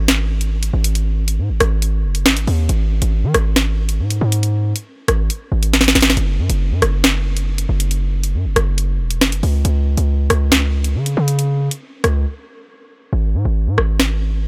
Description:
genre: hip hop, drill.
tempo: 138 BPM.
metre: 4/4.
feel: half-time.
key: unclear.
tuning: A4 = 444 Hz.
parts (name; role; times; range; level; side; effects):
hard-hitting 808-style bass; bass; 0.0-14.5 s; E1 to D#3; -19 LUFS; equal; none.
drill drum kit; drums; 0.1-14.1 s; hi-hat, rim click, snare drum; -19 LUFS; equal; none.
room: digital ambience.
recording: none.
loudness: -17 LUFS.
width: mono.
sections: 0.0-13.1 A section; 13.1-14.5 B section.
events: drum fill 5.7-6.2; break 12.3-13.1; hi-hats muted 13.1-14.5.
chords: none.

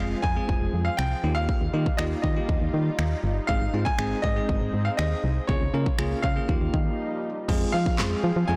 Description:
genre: dance-pop.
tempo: 120 BPM.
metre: 4/4.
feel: straight.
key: F minor.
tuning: A4 = 438 Hz.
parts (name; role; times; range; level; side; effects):
bright baby grand piano; melody; 0.0-8.6 s; Db5 to Ab5; -34 LUFS; equal; tape echo.
bell-like tine electric piano; accompaniment; 0.0-8.6 s; Ab3 to Bb4; -34 LUFS; equal; sidechain pumping.
lush unison pad; sustained chords; 0.0-8.6 s; Db3 to Ab4; -38 LUFS; equal; chorus, sidechain pumping.
solid FM bass; bass; 0.0-8.6 s; F1 to F3; -28 LUFS; equal; sidechain pumping.
pop drum kit; drums; 0.2-8.1 s; crash cymbal, finger snaps, handclaps, kick drum, snare drum; -30 LUFS; equal; soft clipping on snare.
room: light reverb.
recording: blown-out, overdriven recording, overdrive.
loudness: -25 LUFS.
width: mono.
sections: 0.0-7.5 A section; 7.5-8.6 B section.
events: break 7.0-7.5.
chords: 0.0 Fm; 1.2 Ebadd9; 3.5 Ab; 5.5 Db6; 6.5 Ebadd9; 7.5 Fm.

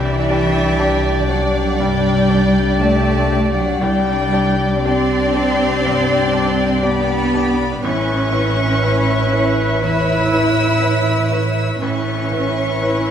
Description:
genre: cinematic.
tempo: 60 BPM.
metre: 4/4.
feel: rubato.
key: unclear.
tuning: A4 = 435 Hz.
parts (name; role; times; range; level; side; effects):
dark studio violin section; melody; 0.0-13.1 s; C#5 to D5; -26 LUFS; left 2 dB; none.
breathy clarinet; second line; 0.0-13.1 s; B4 to D5; -26 LUFS; left 1 dB; none.
small flute group; second line; 0.0-13.1 s; E5 to G5; -26 LUFS; left 3 dB; none.
warm studio violin section; second line; 0.0-13.1 s; E5 to E6; -26 LUFS; left 3 dB; none.
clear baby grand piano; accompaniment; 0.0-13.1 s; A1 to D5; -24 LUFS; left 1 dB; none.
warm studio viola section; accompaniment; 0.0-13.1 s; D4 to D5; -26 LUFS; right 1 dB; none.
warm French horn section; sustained chords; 0.0-13.1 s; D4 to B4; -25 LUFS; left 4 dB; none.
concert harp; arpeggios; 0.0-13.1 s; A2 to D5; -26 LUFS; left 8 dB; none.
dark studio double bass section; bass; 0.0-13.1 s; A1 to C2; -22 LUFS; right 3 dB; none.
warm studio cello section; bass; 0.0-13.1 s; E3 to E4; -20 LUFS; right 2 dB; none.
room: moderate scoring stage reverb, RT60 1.7 s.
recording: none.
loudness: -14 LUFS.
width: side -8 dB against mid.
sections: 0.0-13.1 A section.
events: none.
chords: 0.0 Csus2; 7.8 Aadd9.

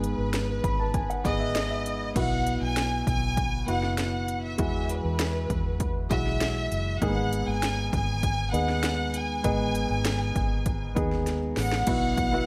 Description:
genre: piano-driven pop.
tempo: 99 BPM.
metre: 4/4.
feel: straight.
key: unclear.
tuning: A4 = 436 Hz.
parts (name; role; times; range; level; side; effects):
warm symphonic violin section; melody; 0.0-12.5 s; B4 to G#5; -34 LUFS; equal; none.
warm upright piano; accompaniment; 0.0-12.5 s; G#2 to B5; -32 LUFS; equal; none.
vintage muted fingered electric bass; bass; 0.0-12.5 s; F#1 to E2; -33 LUFS; equal; none.
house drum kit; drums; 0.0-12.3 s; crash cymbal, hi-hat, kick drum, snare drum; -33 LUFS; equal; overdrive.
room: light reverb.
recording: none.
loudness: -27 LUFS.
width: mono.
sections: 0.0-2.2 A section; 2.2-11.9 B section.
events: upright piano fill 0.3-2.2; drum fill 11.3-11.9.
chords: 0.0 G#m; 2.2 Bsus4; 4.6 Eadd9; 7.0 G#m; 11.9 Bsus4.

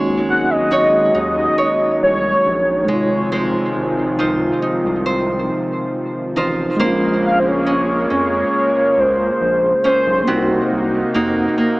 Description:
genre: R&B.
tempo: 69 BPM.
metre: 4/4.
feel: straight.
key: Bb minor.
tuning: A4 = 440 Hz.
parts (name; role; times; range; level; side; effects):
mellow tine electric piano; accompaniment; 0.0-11.8 s; C3 to Gb4; -22 LUFS; equal; medium stereo tremolo.
lush unison pad; sustained chords; 0.0-11.8 s; C3 to Gb4; -23 LUFS; equal; chorus.
nylon-string guitar; arpeggios; 0.0-11.8 s; C3 to Db5; -21 LUFS; right 1 dB; dub echo.
round analog bass; bass; 0.0-11.5 s; Ab1 to F2; -26 LUFS; equal; none.
warm velvety synth lead; melody; 0.3-10.7 s; C5 to Gb5; -17 LUFS; equal; chorus, dub echo.
room: moderate plate reverb, RT60 2.3 s.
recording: echo-heavy mix, small speaker sound.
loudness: -14 LUFS.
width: side -21 dB against mid.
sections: 0.0-11.8 A section.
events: none.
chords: 0.0 Ab7sus4; 2.9 Dbmaj9/Ab; 6.8 Bbm9; 10.3 Cm7b5.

